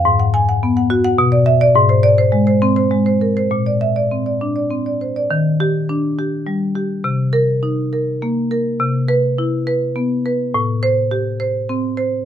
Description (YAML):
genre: classical, contemporary piece for solo marimba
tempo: 104 BPM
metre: 3/4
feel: rubato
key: Eb lydian from 5.3 s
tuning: A4 = 437 Hz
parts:
  - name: marimba with medium hard mallets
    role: solo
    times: 0.0-12.2 s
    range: Ab2 to Ab5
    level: -14 LUFS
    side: equal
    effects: none
room: little or no reverb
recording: close, detailed microphones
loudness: -14 LUFS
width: side -9 dB against mid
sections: 0.0-5.3 A section; 5.3-12.2 B section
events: none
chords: 0.0 Abm7; 1.2 Bm; 1.8 Ab; 3.5 Bbadd9; 5.3 Ebmaj7; 7.0 Cm7; 8.8 Cmaj7; 10.5 Am7